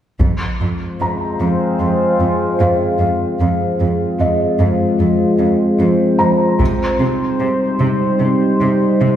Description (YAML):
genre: cinematic, hybrid orchestral and electronic film score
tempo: 75 BPM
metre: 4/4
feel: straight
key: F minor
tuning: A4 = 441 Hz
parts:
  - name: analog drone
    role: sustained chords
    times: 0.8-9.2 s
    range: G3 to C5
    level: -15 LUFS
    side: left 1 dB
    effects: chorus
  - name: clear symphonic cello section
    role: bass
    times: 0.2-9.1 s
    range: F2 to C3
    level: -19 LUFS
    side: right 2 dB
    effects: none
  - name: taiko ensemble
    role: drums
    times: 0.2-1.8, 6.6-8.2 s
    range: none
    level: -19 LUFS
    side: equal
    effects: none
  - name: felt-muted upright piano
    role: texture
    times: 1.0-9.2 s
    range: Eb5 to Bb5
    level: -23 LUFS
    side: equal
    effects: digital delay
room: wet scoring stage reverb, RT60 1.6 s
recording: heard from further back in the room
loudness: -13 LUFS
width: side -10 dB against mid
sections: 0.2-9.2 A section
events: none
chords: 0.2 Fm; 6.6 Cm